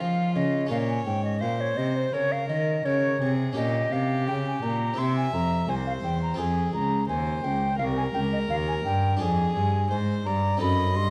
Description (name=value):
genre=classical, baroque-style sonata movement with continuo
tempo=85 BPM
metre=4/4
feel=straight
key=F minor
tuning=A4 = 439 Hz
part: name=warm violin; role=melody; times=0.0-11.1 s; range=F4 to E5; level=-36 LUFS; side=equal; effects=none
part: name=baroque flute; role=second line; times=0.0-11.1 s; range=C5 to C6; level=-31 LUFS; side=equal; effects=none
part: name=harpsichord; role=accompaniment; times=0.0-11.1 s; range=C2 to Bb4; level=-34 LUFS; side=equal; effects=none
part: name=rich cello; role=bass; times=0.0-11.1 s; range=C2 to F3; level=-29 LUFS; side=equal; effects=none
room=moderate recital hall reverb, RT60 1.8 s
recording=vinyl crackle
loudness=-26 LUFS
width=mono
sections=0.0-11.1 A section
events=none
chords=0.0 Db; 0.7 Bbm; 3.6 Gdim/Bb; 5.0 C; 6.4 Fm; 9.2 Ddim/F